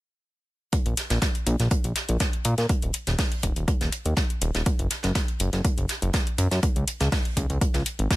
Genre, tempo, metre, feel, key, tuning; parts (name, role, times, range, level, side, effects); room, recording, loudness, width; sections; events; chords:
progressive house; 122 BPM; 4/4; straight; A4 = 440 Hz
electronic hi-hat; drums; 0.7-8.2 s; -30 LUFS; left 3 dB; overdrive, sidechain pumping on hats
electronic kick drum; drums; 0.7-8.2 s; -25 LUFS; equal; overdrive
soft brush drum kit; drums; 0.7-8.2 s; hi-hat, snare drum; -32 LUFS; right 2 dB; sidechain pumping on hats, high-pass filter on hats, high-pass filter on snare, high-pass filter on room
fat analog bass; bass; 0.9-8.1 s; Eb1 to Bb2; -24 LUFS; equal; sidechain pumping
small room ambience; -22 LUFS; side -17 dB against mid
0.7-8.2 A section